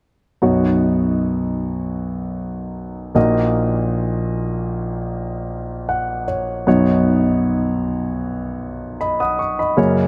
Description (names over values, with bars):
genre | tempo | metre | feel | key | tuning
pop | 77 BPM | 4/4 | straight | B major | A4 = 439 Hz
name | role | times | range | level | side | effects
warm concert grand piano | accompaniment | 0.4-10.1 s | A#1 to D#6 | -20 LUFS | equal | none
room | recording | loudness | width
wet plate reverb, RT60 3.4 s | none | -20 LUFS | mono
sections
0.4-10.1 A section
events
grand piano fill 5.5-6.7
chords
0.4 Badd9; 3.2 D#m/A#; 6.7 Badd9